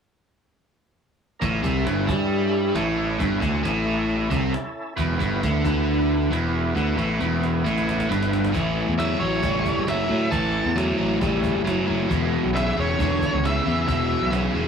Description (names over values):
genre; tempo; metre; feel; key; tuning
blues rock power trio and southern rock; 135 BPM; 4/4; straight; A major; A4 = 442 Hz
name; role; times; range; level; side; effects
overdriven tonewheel organ; sustained chords; 1.4-14.7 s; B3 to B4; -34 LUFS; right 3 dB; slow rotary speaker, chorus vibrato
biting overdriven guitar; riff; 1.4-14.7 s; E2 to G3; -23 LUFS; equal; none
fuzz picked electric bass; bass; 1.4-14.7 s; E1 to A2; -25 LUFS; equal; overdrive
cajon; drums; 1.4-14.4 s; none; -32 LUFS; right 1 dB; none
octave-fuzz lead guitar; melody; 9.0-14.3 s; C#5 to A5; -26 LUFS; equal; distortion, analog delay
room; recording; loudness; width
light reverb; none; -20 LUFS; side -7 dB against mid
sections
1.4-8.5 A section; 8.5-14.7 B section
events
drum fill 6.8-8.5; lead electric guitar solo 8.5-14.7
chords
1.4 A; 5.0 E5; 8.5 A; 12.1 E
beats
| 1.42 1.86 2.31 2.75 | 3.20 3.64 4.09 4.53 | 4.98 5.42 5.87 6.31 | 6.76 7.20 7.65 8.09 | 8.54 8.98 9.43 9.88 | 10.32 10.77 11.21 11.66 | 12.10 12.55 12.99 13.44 | 13.88 14.33